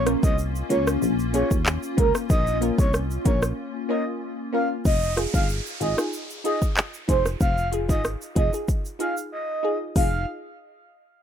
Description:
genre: dancehall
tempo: 94 BPM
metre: 4/4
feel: straight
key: F minor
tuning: A4 = 441 Hz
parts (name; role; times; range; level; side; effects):
- breathy flute-like synth lead; melody; 0.0-10.3 s; Bb4 to F5; -27 LUFS; right 2 dB; chorus, phaser, tape echo
- hollow soft pad; sustained chords; 0.0-4.8 s; Bb3 to F4; -30 LUFS; left 4 dB; ensemble chorus, sidechain pumping
- solid FM bass; bass; 0.0-10.3 s; F1 to Eb2; -27 LUFS; equal; none
- glassy wavetable pluck; accompaniment; 0.1-10.3 s; Bb3 to Bb4; -29 LUFS; left 1 dB; chorus, sidechain pumping
- afro-pop drum kit; drums; 0.1-10.1 s; handclaps, hi-hat, kick drum, rim click, shaker; -23 LUFS; equal; none
- tube shaker; percussion; 0.2-10.3 s; none; -44 LUFS; equal; none
- downlifter; sound effects; 4.9-10.0 s; none; -36 LUFS; right 3 dB; none
room: little or no reverb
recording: rough home demo mix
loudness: -21 LUFS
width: side -9 dB against mid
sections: 0.0-4.9 A section; 4.9-10.0 B section; 10.0-11.2 C section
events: break 3.6-4.9; drums muted 9.3-10.0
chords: 0.0 Bbm; 4.9 Fm7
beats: 0.38 1.02 1.66 | 2.30 2.94 3.58 4.21 | 4.85 5.49 6.13 6.77 | 7.41 8.04 8.68 9.32 | 9.96

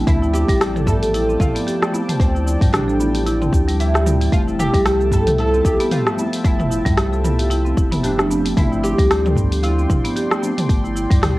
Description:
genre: organic downtempo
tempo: 113 BPM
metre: 4/4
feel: swing 56% on 16ths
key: unclear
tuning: A4 = 440 Hz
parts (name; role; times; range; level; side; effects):
- oud; melody; 0.0-11.4 s; C4 to A4; -22 LUFS; right 1 dB; cassette tape, analog delay
- mellow tine electric piano; accompaniment; 0.0-10.5 s; F3 to E5; -27 LUFS; right 1 dB; slow stereo tremolo, vintage 12-bit sampler grit, sidechain pumping, cassette tape, analog delay
- warm analog pad; sustained chords; 0.0-11.4 s; F3 to C6; -29 LUFS; left 2 dB; chorus, tremolo, sidechain pumping, cassette tape
- marimba with medium hard mallets; arpeggios; 0.0-11.4 s; E3 to A4; -23 LUFS; equal; cassette tape, analog delay
- warm sub bass; bass; 0.0-11.4 s; D1 to D2; -21 LUFS; equal; sidechain pumping
- deep house drum kit; drums; 0.1-11.3 s; cabasa, hi-hat, rim click, toms; -23 LUFS; equal; studio reverb, cassette tape
- electronic kick drum; drums; 0.1-11.2 s; none; -18 LUFS; equal; studio reverb, cassette tape
- udu; percussion; 0.9-11.2 s; none; -22 LUFS; equal; none
room: digital ambience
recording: home recording on cassette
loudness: -15 LUFS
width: side -18 dB against mid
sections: 0.0-11.4 A section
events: none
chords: 0.1 Dm7; 4.3 Fmaj7; 8.6 G7sus4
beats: | 0.07 0.60 1.14 1.67 | 2.20 2.73 3.26 3.79 | 4.32 4.85 5.38 5.92 | 6.45 6.98 7.51 8.04 | 8.57 9.10 9.63 10.16 | 10.69 11.22

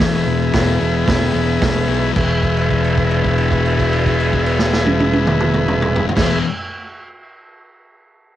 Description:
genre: garage rock duo or trio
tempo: 111 BPM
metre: 4/4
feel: straight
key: E major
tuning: A4 = 444 Hz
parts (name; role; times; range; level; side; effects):
- combo organ; sustained chords; 0.0-6.4 s; G#4 to E5; -20 LUFS; right 2 dB; cassette tape
- thick fuzz guitar; riff; 0.0-6.4 s; E2 to E3; -19 LUFS; left 7 dB; distortion, cassette tape
- modern bright picked electric bass; bass; 0.0-6.4 s; E1 to B1; -21 LUFS; right 2 dB; none
- vintage drum kit; drums; 0.5-6.3 s; crash cymbal, hi-hat, kick drum, snare drum, toms; -20 LUFS; right 2 dB; cassette tape
room: little or no reverb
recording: home recording on cassette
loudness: -14 LUFS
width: side -12 dB against mid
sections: 0.0-2.2 A section; 2.2-6.5 B section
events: held note 2.2-6.2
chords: 0.0 E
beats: 0.54 1.08 1.62 | 2.16 2.70 3.24 3.78 | 4.32 4.87 5.41 5.95

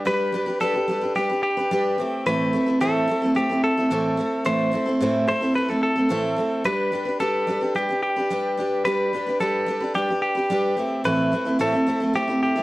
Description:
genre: pop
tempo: 109 BPM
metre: 4/4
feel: straight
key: G major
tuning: A4 = 443 Hz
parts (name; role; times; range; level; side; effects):
- direct-recorded clean electric guitar; melody; 0.0-12.6 s; G4 to C5; -24 LUFS; equal; slapback echo
- picked steel-string acoustic guitar; accompaniment; 0.0-12.6 s; A2 to B4; -22 LUFS; equal; none
room: moderate studio reverb, RT60 0.6 s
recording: worn, warbling old tape, cassette tape, warbly pitch drift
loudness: -20 LUFS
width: side -18 dB against mid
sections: 0.0-12.6 A section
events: none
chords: 0.0 G; 2.0 Am; 6.7 G; 10.8 Am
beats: | 0.06 0.61 1.16 1.71 | 2.26 2.81 3.36 3.91 | 4.46 5.01 5.56 6.11 | 6.66 7.21 7.76 8.31 | 8.86 9.41 9.96 10.51 | 11.06 11.61 12.16

